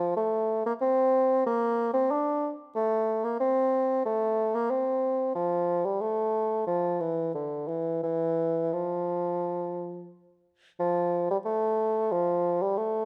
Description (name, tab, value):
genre	classical, baroque-style fantasia for unaccompanied bassoon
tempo	86-94 BPM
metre	4/4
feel	rubato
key	F major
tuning	A4 = 440 Hz
part	mellow bassoon	solo	0.0-13.1 s	D3 to D4	-28 LUFS	equal	none
room	moderate stone room reverb, RT60 1.4 s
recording	none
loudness	-28 LUFS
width	mono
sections	0.0-10.8 A section; 10.8-13.1 A section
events	none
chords	none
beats	| 0.17 0.82 1.47 2.11 | 2.77 3.42 4.07 4.72 | 5.37 6.02 6.68 7.35 | 8.04 8.73 9.43 10.11 | 10.80 11.47 12.12 12.78